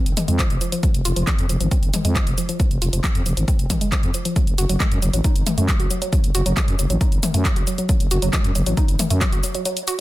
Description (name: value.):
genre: driving peak-time techno.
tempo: 136 BPM.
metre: 4/4.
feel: straight.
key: unclear.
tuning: A4 = 440 Hz.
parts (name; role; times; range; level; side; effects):
growling FM bass; bass; 0.1-9.4 s; F1 to Gb2; -21 LUFS; equal; sidechain pumping.
techno drum kit; drums; 0.1-10.0 s; handclaps, hi-hat, shaker, toms; -25 LUFS; left 1 dB; sidechain pumping on hats, sidechain pumping on toms, sidechain pumping on cymbals, sidechain pumping on perc.
woody wave-folded pluck; riff; 0.2-9.9 s; F3 to Gb4; -26 LUFS; equal; chorus, tube saturation, cassette tape, sidechain pumping, dub echo.
electronic kick drum; drums; 0.4-9.3 s; none; -20 LUFS; equal; none.
room: little or no reverb.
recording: dense, heavily limited modern master.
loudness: -17 LUFS.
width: side -16 dB against mid.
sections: 0.0-10.0 A section.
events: filter sweep on synth arpeggio sound 0.0-10.0.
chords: none.